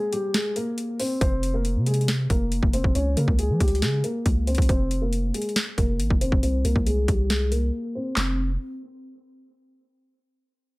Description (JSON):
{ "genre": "hip hop, trap", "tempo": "138 BPM", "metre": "4/4", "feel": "half-time", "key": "F minor", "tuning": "A4 = 442 Hz", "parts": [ { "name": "felt-muted upright piano", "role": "melody", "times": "0.0-8.4 s", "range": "G3 to Db5", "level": "-27 LUFS", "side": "left 1 dB", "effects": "low-pass filter, tape echo" }, { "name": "trap drum kit", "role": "drums", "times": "0.1-8.3 s", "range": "handclaps, hi-hat, kick drum, snare drum", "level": "-24 LUFS", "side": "equal", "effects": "overdrive" }, { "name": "long sustained 808-style bass", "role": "bass", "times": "1.2-8.6 s", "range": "F1 to F3", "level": "-24 LUFS", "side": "equal", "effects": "none" } ], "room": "digital ambience", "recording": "none", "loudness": "-21 LUFS", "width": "side -22 dB against mid", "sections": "0.0-8.2 A section; 8.2-9.9 B section", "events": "break 0.0-1.2, 7.7-8.2; filter sweep on felt piano 0.0-8.2", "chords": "0.0 C5; 1.2 Fm; 3.0 Db5; 4.7 Fm; 6.4 C5; 8.2 F5", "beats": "0.34 0.78 | 1.21 1.65 2.08 2.52 | 2.95 3.39 3.82 4.26 | 4.69 5.13 5.56 6.00 | 6.43 6.87 7.30 7.73 | 8.17" }